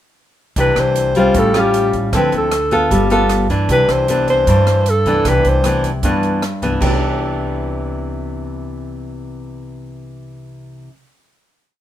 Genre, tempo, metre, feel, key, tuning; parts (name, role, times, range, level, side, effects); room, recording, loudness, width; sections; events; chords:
bossa nova; 154 BPM; 4/4; straight; C major; A4 = 439 Hz
breathy alto saxophone; melody; 0.6-5.9 s; G4 to C5; -16 LUFS; equal
nylon-string guitar; accompaniment; 0.6-10.9 s; G2 to A4; -18 LUFS; left 1 dB
upright bass; bass; 0.6-10.8 s; G1 to G2; -21 LUFS; equal
open jazz drum kit; drums; 0.6-6.9 s; crash cymbal, hi-hat, kick drum, rim click; -25 LUFS; right 2 dB
light reverb; minimal, uncompressed stereo recording; -13 LUFS; side -11 dB against mid
0.6-6.8 A section; 6.8-9.9 final chord
0.6 Cadd9; 1.3 A7b13; 2.1 Dm9; 2.9 G9; 3.7 Cmaj9